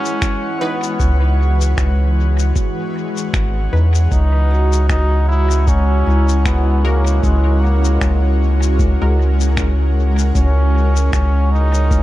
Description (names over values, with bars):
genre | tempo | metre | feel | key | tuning
ambient dub | 77 BPM | 4/4 | swing 57% on 16ths | unclear | A4 = 440 Hz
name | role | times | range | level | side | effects
trombone with straight mute | melody | 0.0-12.0 s | G#3 to E4 | -24 LUFS | equal | dub echo
granular cloud pad | sustained chords | 0.0-12.0 s | E3 to C#5 | -25 LUFS | left 1 dB | built-in reverb
vibraphone with soft mallets | arpeggios | 0.0-12.0 s | G#3 to A#5 | -26 LUFS | equal | analog delay
drifting glass-harmonics texture | texture | 0.0-12.0 s | F#4 to F#5 | -29 LUFS | right 2 dB | chorus, built-in reverb
electronic shaker and finger snaps | drums | 0.1-12.0 s | none | -29 LUFS | left 2 dB | dub echo
electronic kick drum | drums | 0.2-12.0 s | none | -18 LUFS | equal | none
filtered dub chord stab | stabs | 0.6-9.2 s | E3 to B4 | -29 LUFS | left 1 dB | none
soft dub sub bass | bass | 1.0-12.0 s | G#1 to E2 | -14 LUFS | equal | none
room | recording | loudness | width
little or no reverb | echo-heavy mix | -13 LUFS | side -15 dB against mid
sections
0.0-12.0 A section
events
none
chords
0.0 C#m9; 4.1 F#add9/C#